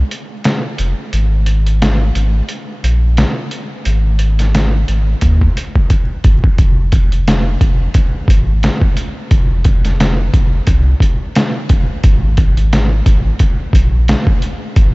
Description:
hip hop, boom-bap hip-hop; 88 BPM; 4/4; swing 56% on 16ths; A4 = 440 Hz
warm sub bass; bass; 0.0-14.9 s; F1 to Eb2; -13 LUFS; equal
trip hop sampler-style drum kit; drums; 0.1-14.9 s; hi-hat, kick drum, snare drum; -13 LUFS; equal; overdrive
light reverb; vinyl crackle, nothing above 7.7 kHz; -11 LUFS; side -24 dB against mid
0.0-14.9 A section
break 0.0-6.6; drum fill 5.2-6.6
0.45 | 1.13 1.81 2.49 3.18 | 3.86 4.54 5.22 5.90 | 6.58 7.27 7.95 8.63 | 9.31 9.99 10.68 11.36 | 12.04 12.72 13.40 14.09 | 14.77

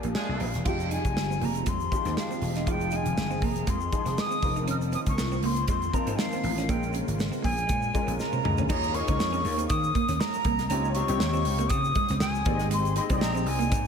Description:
polished 1980s jazz-funk pop; 120 BPM; 4/4; swing 54% on 16ths; A4 = 438 Hz
clear grand piano; accompaniment; 0.0-13.9 s; C3 to Eb5; -34 LUFS; left 4 dB; ensemble chorus, slapback echo
clean electric guitar; riff; 0.0-13.7 s; Ab3 to F4; -34 LUFS; right 6 dB; lush chorus, slapback echo
vintage slap bass; bass; 0.0-13.9 s; Fb1 to Eb3; -30 LUFS; equal
modern studio drum kit; drums; 0.0-13.8 s; crash cymbal, hi-hat, kick drum, snare drum, toms; -30 LUFS; equal
breathy jazz flute; melody; 0.2-13.9 s; F5 to F6; -30 LUFS; left 1 dB; slapback echo
clear horn section; second line; 0.2-0.5 s; F3 to Ab4; -37 LUFS; equal; slapback echo, tape echo
hollow soft pad; sustained chords; 1.3-8.7 s; Db3 to Ab4; -37 LUFS; left 1 dB; ensemble chorus
egg shaker; percussion; 0.7-13.9 s; -48 LUFS; left 7 dB
moderate lush hall reverb, RT60 2.4 s; big arena sound; -24 LUFS; side -6 dB against mid
0.7-8.7 A section; 8.7-13.9 B section
band accent 0.0-0.7; drum fill 8.2-8.7
0.0 Bb7; 0.7 Fm9; 4.4 Dbmaj13/F; 6.7 Bbm7; 8.7 Eb9sus4; 10.7 Dbmaj9#11; 12.5 Abmaj7
0.15 | 0.66 1.16 1.66 2.17 | 2.67 3.17 3.67 4.18 | 4.68 5.18 5.68 6.19 | 6.69 7.19 7.69 8.19 | 8.70 9.20 9.70 10.20 | 10.70 11.21 11.71 12.21 | 12.71 13.21 13.72

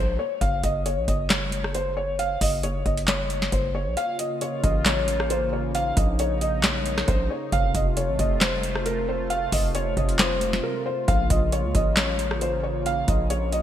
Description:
hip hop, trap; 135 BPM; 4/4; half-time; Bb harmonic minor; A4 = 440 Hz
felt-muted upright piano; melody; 0.0-13.6 s; Bb4 to F5; -26 LUFS; left 1 dB; wide subtle chorus
hard-hitting 808-style bass; bass; 0.0-13.6 s; F1 to Db2; -28 LUFS; equal
booming analog drum machine; drums; 0.4-13.6 s; handclaps, hi-hat, kick drum, rim click, snare drum; -24 LUFS; equal; gated reverb
sweeping resonant pad; sustained chords; 4.0-13.6 s; C3 to F4; -31 LUFS; right 2 dB; chorus
moderate lush hall reverb, RT60 2.1 s; bright 1980s-style digital production; -21 LUFS; side -10 dB against mid
0.0-13.6 A section
kick muted 4.0-4.4; break 10.6-11.1
0.4 Gb5; 4.0 Bbm; 7.5 F; 11.1 Bbm
| 0.41 0.86 1.30 1.75 | 2.19 2.64 3.08 3.52 | 3.97 4.41 4.86 5.30 | 5.75 6.19 6.64 7.08 | 7.53 7.97 8.41 8.86 | 9.30 9.75 10.19 10.64 | 11.08 11.53 11.97 12.41 | 12.86 13.30

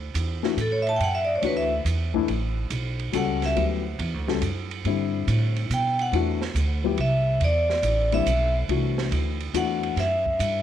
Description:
modal jazz; 141 BPM; 3/4; swing 67% on 8ths; D mixolydian; A4 = 441 Hz
upright bass; bass; 0.0-10.6 s; A1 to B2; -26 LUFS; right 1 dB
open jazz drum kit; drums; 0.1-10.5 s; hi-hat, kick drum, ride cymbal, snare drum; -33 LUFS; right 10 dB
dark baby grand piano; accompaniment; 0.4-10.0 s; D3 to A4; -28 LUFS; left 11 dB
vibraphone with medium hard mallets; melody; 0.6-3.6, 5.7-10.6 s; A4 to A5; -25 LUFS; equal
light reverb, studio reverb; 1960s-style stereo with parts hard left and right; -22 LUFS; side -10 dB against mid
0.0-10.6 A section
vibraphone solo 0.0-10.6
0.0 Dmaj9; 4.9 Cmaj9; 10.0 Dadd9 (rootless)
0.16 0.58 | 1.01 1.44 1.86 | 2.29 2.72 3.14 | 3.57 4.00 4.42 | 4.85 5.28 5.70 | 6.13 6.56 6.98 | 7.41 7.84 8.26 | 8.69 9.12 9.54 | 9.97 10.39

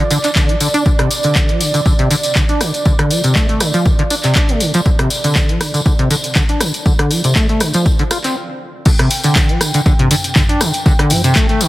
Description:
acid house; 120 BPM; 4/4; swing 54% on 16ths; D minor pentatonic; A4 = 441 Hz
warm analog pad; sustained chords; 0.0-11.7 s; D5 to G5; -24 LUFS; right 3 dB; chorus, sidechain pumping
acid bass, saw; riff; 0.0-11.7 s; C3 to F4; -16 LUFS; equal; lush chorus, sidechain pumping, digital delay
punchy analog drum machine; drums; 0.1-11.7 s; crash cymbal, handclaps, hi-hat, rim click, toms; -20 LUFS; equal
tambourine; percussion; 0.1-11.7 s; -22 LUFS; left 2 dB
electronic kick drum; drums; 0.4-11.5 s; -14 LUFS; equal
light reverb; heavily compressed radio sound; -12 LUFS; side -17 dB against mid
0.0-8.9 A section; 8.9-11.7 B section
filter sweep on acid bass 0.0-8.9; stop 8.4-8.9; drop 8.9-11.7
0.36 | 0.86 1.36 1.86 2.36 | 2.86 3.36 3.86 4.36 | 4.86 5.36 5.86 6.36 | 6.86 7.36 7.86 8.36 | 8.86 9.36 9.86 10.36 | 10.86 11.36

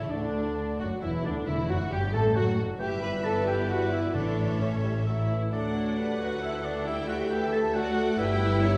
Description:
quick classical-period movement for symphony orchestra; 134 BPM; 3/4; rubato; D major; A4 = 440 Hz
rich studio violin section; melody; 0.0-8.8 s; D4 to G5; -43 LUFS; equal
concert flute; second line; 0.0-8.8 s; C#5 to B5; -41 LUFS; equal
rich studio violin section; second line; 0.0-8.8 s; D4 to G5; -43 LUFS; equal
warm oboe; second line; 0.0-8.8 s; C#5 to B5; -41 LUFS; equal
rich studio viola section; accompaniment; 0.0-8.8 s; C#4 to B4; -35 LUFS; equal
rich studio cello section; bass; 0.0-8.8 s; D2 to D3; -33 LUFS; equal
clear clarinet; second line; 0.1-8.8 s; D4 to C#5; -40 LUFS; equal
warm bassoon; accompaniment; 0.1-8.8 s; D3 to A3; -40 LUFS; equal
mellow French horn section; sustained chords; 0.1-8.8 s; D3 to G4; -37 LUFS; equal
clear studio double bass section; bass; 0.1-8.8 s; E1 to D2; -36 LUFS; equal
timpani; percussion; 1.5-4.8 s; A2 to D3; -40 LUFS; equal
wet recital hall reverb, RT60 1.7 s; heard from further back in the room; -28 LUFS; mono
0.1-8.8 A section
0.1 D; 1.5 A5/E; 2.4 N.C.; 2.8 Em/G; 4.1 A; 5.5 D; 8.2 Em/G
| 0.11 0.57 1.02 | 1.47 1.92 2.37 | 2.81 3.25 3.70 | 4.15 4.61 5.07 | 5.53 5.98 6.43 | 6.87 7.31 7.75 | 8.19 8.63

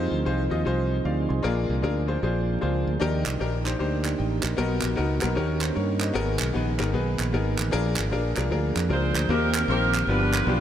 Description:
uptempo gospel; 153 BPM; 4/4; swing 63% on 8ths; Eb major; A4 = 441 Hz
bright grand piano; accompaniment; 0.0-10.6 s; G2 to C6; -28 LUFS; left 4 dB
mellow tonewheel organ; sustained chords; 0.0-10.6 s; Eb3 to Ab4; -30 LUFS; right 4 dB; slow rotary speaker, chorus vibrato
fingered electric bass; bass; 0.0-10.6 s; G1 to G2; -26 LUFS; equal
group handclap; percussion; 3.3-10.4 s; -33 LUFS; right 5 dB
warm saxophone section; melody; 8.9-10.6 s; B3 to C5; -26 LUFS; right 2 dB; diffuse ambient delay
moderate huge ambient reverb, RT60 8.3 s; dreamy mix soaked in reverb; -22 LUFS; side -10 dB against mid
0.0-9.3 A section; 9.3-10.6 B section
0.0 Fm7; 1.4 Bb7; 3.0 Ebmaj7; 4.6 Bmaj7; 5.4 Eb7; 6.2 Abmadd9; 7.7 Bb7; 9.3 Eb6; 10.1 G7
0.26 0.65 1.04 | 1.44 1.83 2.22 2.62 | 3.01 3.40 3.80 4.19 | 4.58 4.98 5.37 5.76 | 6.16 6.55 6.94 7.34 | 7.73 8.12 8.52 8.91 | 9.30 9.69 10.08 10.47

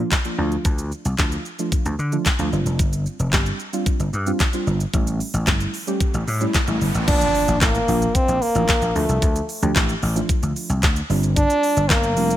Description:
dance-pop; 112 BPM; 4/4; straight; D minor; A4 = 438 Hz
deep mellow chord stab; accompaniment; 0.0-12.4 s; F3 to G4; -27 LUFS; right 2 dB; chorus, sidechain pumping
pop drum kit; drums; 0.1-12.4 s; crash cymbal, handclaps, hi-hat, kick drum, shaker, snare drum; -21 LUFS; equal
vintage slap bass; bass; 0.4-12.3 s; F1 to D3; -22 LUFS; equal; sidechain pumping
riser and impact; sound effects; 6.0-9.2 s; -30 LUFS; equal
warm French horn; melody; 7.1-12.4 s; A3 to D4; -20 LUFS; equal; tape echo
digital ambience; -18 LUFS; side -13 dB against mid
0.0-7.1 A section; 7.1-12.4 B section
riser 6.0-7.1; impact 7.1-9.2
0.4 Dm; 2.5 G7sus4; 4.9 A7; 7.1 Bb; 9.0 Dm; 11.1 G7sus4
0.11 | 0.65 1.19 1.72 2.26 | 2.79 3.33 3.86 4.40 | 4.94 5.47 6.01 6.54 | 7.08 7.61 8.15 8.69 | 9.22 9.76 10.29 10.83 | 11.36 11.90

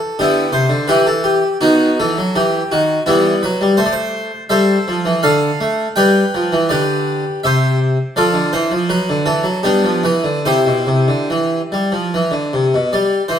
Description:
classical, baroque-style suite movement for harpsichord; 71-85 BPM; 3/4; rubato; C major from 3.8 s; A4 = 441 Hz
harpsichord; solo; 0.0-13.4 s; B2 to G5; -13 LUFS; equal
wet stone room reverb, RT60 1.3 s; -13 LUFS; side -8 dB against mid
0.0-12.9 A section
0.0 Em; 1.6 B/D#; 3.1 Em; 3.8 Am; 5.2 Dm; 6.0 G; 7.4 C; 8.2 Dm7; 8.9 D; 9.7 G7; 10.4 C
0.18 0.89 | 1.62 2.35 3.06 | 3.78 4.50 5.23 | 5.95 6.69 7.42 | 8.15 8.90 9.65 | 10.45 11.28 12.12 | 12.93

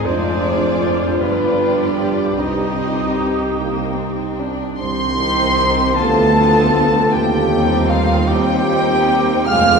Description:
classical; 51 BPM (dotted quarters); 6/8; uneven beats, rubato; C minor; A4 = 440 Hz
warm chamber violin section; melody; 0.0-9.8 s; F5 to F6; -23 LUFS; left 3 dB
dark cor anglais; second line; 0.0-9.8 s; Eb4 to F5; -25 LUFS; right 1 dB
rich chamber violin section; second line; 0.0-9.8 s; Bb3 to Eb5; -25 LUFS; left 2 dB
warm clarinet; second line; 0.0-4.4 s; Eb4 to D5; -24 LUFS; equal
warm chamber viola section; accompaniment; 0.0-9.8 s; D3 to G4; -24 LUFS; equal
mellow French horn section; sustained chords; 0.0-9.8 s; G3 to Ab4; -24 LUFS; left 1 dB
rich chamber cello section; bass; 0.0-9.8 s; C2 to C3; -25 LUFS; right 2 dB
rich chamber double bass section; bass; 0.0-9.8 s; F1 to Eb2; -24 LUFS; right 2 dB
silver concert flute; second line; 4.8-9.8 s; F5 to F6; -21 LUFS; equal
warm trombone section; sustained chords; 4.8-9.8 s; C3 to Ab3; -26 LUFS; right 1 dB
dark trumpet; stabs; 4.8-9.8 s; F4 to F5; -20 LUFS; right 4 dB
warm tuba; bass; 4.8-9.8 s; F1 to Eb2; -23 LUFS; right 1 dB
wet cathedral reverb, RT60 4.8 s; recorded in a church or concert hall, small room ambience; -14 LUFS; side -5 dB against mid
0.0-4.8 A section; 4.8-9.8 B section
0.1 Dm7b5/F; 1.2 G; 2.4 Cm; 6.0 Bdim/D; 7.1 Cm/Eb
| 0.07 1.21 | 2.38 3.59 | 4.81 5.98 | 7.13 8.29 | 9.48

